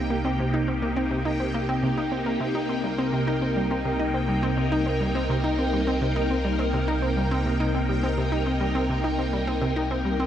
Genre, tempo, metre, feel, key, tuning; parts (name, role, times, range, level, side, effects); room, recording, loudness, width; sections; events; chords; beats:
ambient, sequencer-driven space music; 104 BPM; 4/4; straight; C minor; A4 = 440 Hz
phased string machine; sustained chords; 0.0-10.3 s; C3 to Bb4; -26 LUFS; equal; ensemble chorus, phaser
warm sub bass; bass; 0.0-10.3 s; C2; -31 LUFS; equal
bubbling stepped-filter texture; texture; 0.0-10.3 s; G5; -34 LUFS; left 1 dB; chorus, built-in reverb
analog pluck; riff; 0.1-10.3 s; C3 to Eb4; -27 LUFS; equal; chorus, tape echo
wet huge ambient reverb, RT60 7.9 s; -22 LUFS; side -10 dB against mid
0.0-10.3 A section
0.0 Cm7
| 0.10 0.68 1.26 1.83 | 2.41 2.99 3.56 4.14 | 4.72 5.29 5.87 6.45 | 7.03 7.60 8.18 8.76 | 9.33 9.91